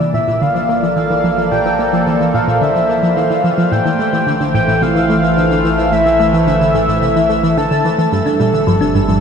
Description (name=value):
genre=ambient, sequencer-driven space music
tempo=109 BPM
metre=4/4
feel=straight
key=unclear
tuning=A4 = 440 Hz
part: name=pulse-width lead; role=melody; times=0.0-8.1 s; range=D5 to A5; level=-17 LUFS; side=left 1 dB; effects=chorus, shimmer reverb, analog delay
part: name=sweeping resonant pad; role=sustained chords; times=0.0-9.2 s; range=E3 to D5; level=-16 LUFS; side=right 1 dB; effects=chorus, phaser, shimmer reverb
part: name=tight sequenced synth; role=riff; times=0.0-9.2 s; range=G2 to Bb3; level=-17 LUFS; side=equal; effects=chorus, analog delay
part: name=round analog bass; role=bass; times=0.0-9.2 s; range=G1 to Bb1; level=-28 LUFS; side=equal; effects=none
part: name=pulsing gated texture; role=texture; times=0.0-9.2 s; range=E3 to E6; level=-25 LUFS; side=left 1 dB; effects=chorus, built-in reverb, shimmer reverb
part: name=thumb-piano-like synth pluck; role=arpeggios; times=8.3-9.1 s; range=Bb2 to D4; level=-17 LUFS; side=left 2 dB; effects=chorus, auto-pan, analog delay
room=wet huge ambient reverb, RT60 7.8 s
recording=cassette tape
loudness=-12 LUFS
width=side -6 dB against mid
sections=0.0-9.2 A section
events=fade-in on analog synth bass 0.0-9.2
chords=0.0 Bbmaj7; 3.7 Am7; 8.1 G7(no3)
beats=0.41 0.96 | 1.52 2.07 2.62 3.17 | 3.72 4.27 4.82 5.37 | 5.92 6.47 7.02 7.57 | 8.12 8.67